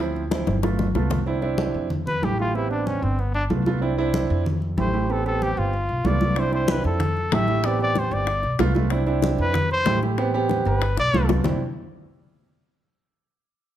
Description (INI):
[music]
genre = Afro-Cuban jazz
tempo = 188 BPM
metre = 4/4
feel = straight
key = C major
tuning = A4 = 440 Hz
[part]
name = warm grand piano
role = accompaniment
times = 0.0-11.6 s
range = F3 to A5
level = -25 LUFS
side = right 4 dB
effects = none
[part]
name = upright bass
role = bass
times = 0.0-11.6 s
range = G1 to F2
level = -25 LUFS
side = equal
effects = none
[part]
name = bongos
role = percussion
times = 0.0-1.2, 6.4-11.5 s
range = none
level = -30 LUFS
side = left 7 dB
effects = none
[part]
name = congas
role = percussion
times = 0.0-11.5 s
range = none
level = -28 LUFS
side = left 2 dB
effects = none
[part]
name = breathy trumpet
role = melody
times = 2.1-11.3 s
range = B3 to E5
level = -25 LUFS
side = left 1 dB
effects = none
[sound]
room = light reverb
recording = none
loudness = -20 LUFS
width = side -11 dB against mid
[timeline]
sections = 0.0-1.3 A section; 1.3-11.5 B section; 11.5-12.7 C section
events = drum fill 0.3-1.3, 11.0-11.5; grand piano fill 0.8-1.3; trumpet solo 1.3-11.5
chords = 0.0 Dm7; 0.6 G7; 1.3 Cadd9; 1.9 Fmaj7; 2.5 Am7; 3.2 G7; 3.8 Cadd9; 4.5 Fmaj7; 5.1 Am7; 5.7 G7; 6.4 Cadd9; 7.0 Fmaj7; 7.6 Am7; 8.3 G7; 8.9 Cadd9; 9.5 Fmaj7; 10.2 Am7; 10.8 G7; 11.5 Cadd9